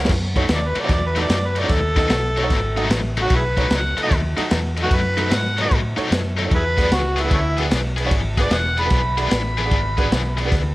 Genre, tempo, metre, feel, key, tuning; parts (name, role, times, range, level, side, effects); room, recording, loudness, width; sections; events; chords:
electric blues shuffle; 150 BPM; 4/4; swing 66% on 8ths; B mixolydian; A4 = 440 Hz
bright upright piano; accompaniment; 0.0-10.5 s; D4 to D#5; -28 LUFS; right 4 dB
cranked stack guitar; riff; 0.0-10.6 s; F#2 to G#4; -25 LUFS; left 4 dB; overdrive, tremolo
vintage muted fingered electric bass; bass; 0.0-10.7 s; E1 to A2; -23 LUFS; equal
crunchy breakbeat drum kit; drums; 0.1-10.6 s; crash cymbal, kick drum, ride cymbal, snare drum; -22 LUFS; equal
overdriven harmonica; melody; 0.5-10.4 s; A3 to B5; -23 LUFS; equal
light reverb, small room ambience; -17 LUFS; side -18 dB against mid
0.1-10.7 A section
harmonica solo 0.1-10.7
0.1 B7; 6.5 E7